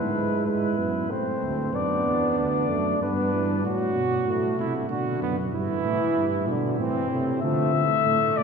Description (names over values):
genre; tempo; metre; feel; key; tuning
classical, imitative canzona for brass ensemble; 95 BPM; 3/4; straight; unclear; A4 = 440 Hz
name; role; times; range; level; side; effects
mellow trumpet; melody; 0.0-3.6, 7.4-8.4 s; B4 to E5; -27 LUFS; left 6 dB; none
mellow trumpet; second line; 0.0-8.4 s; A3 to F#4; -28 LUFS; right 3 dB; none
mellow trombone; accompaniment; 0.0-8.4 s; A2 to B3; -28 LUFS; right 1 dB; none
mellow tuba; bass; 0.0-8.4 s; D2 to D3; -28 LUFS; right 2 dB; none
room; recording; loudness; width
wet cathedral reverb, RT60 5.9 s; heard from further back in the room; -22 LUFS; side -5 dB against mid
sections
0.0-8.4 A section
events
none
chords
0.0 E/G#; 1.1 Am; 1.7 D; 3.0 G; 3.6 F#dim/A; 4.9 Bm; 5.5 Em/G; 6.8 Am; 7.4 Dm